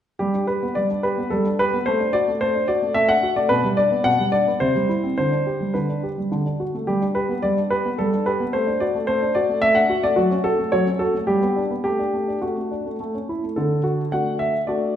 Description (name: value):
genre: classical-period piano sonatina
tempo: 108 BPM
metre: 3/4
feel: straight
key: G major, D major from 10.2 s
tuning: A4 = 441 Hz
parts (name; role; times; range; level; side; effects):
- clear grand piano; solo; 0.2-15.0 s; B2 to F#5; -19 LUFS; equal; none
room: wet recital hall reverb, RT60 1.6 s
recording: heard from further back in the room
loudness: -19 LUFS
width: side -10 dB against mid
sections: 0.2-13.6 A section; 13.6-15.0 B section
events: none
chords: 0.2 G; 1.9 D/A; 3.5 G/B; 4.6 C; 5.2 G/D; 6.3 D; 6.9 G; 8.5 D/A; 10.2 F#m; 11.3 G; 11.9 D/A; 13.0 A; 13.6 D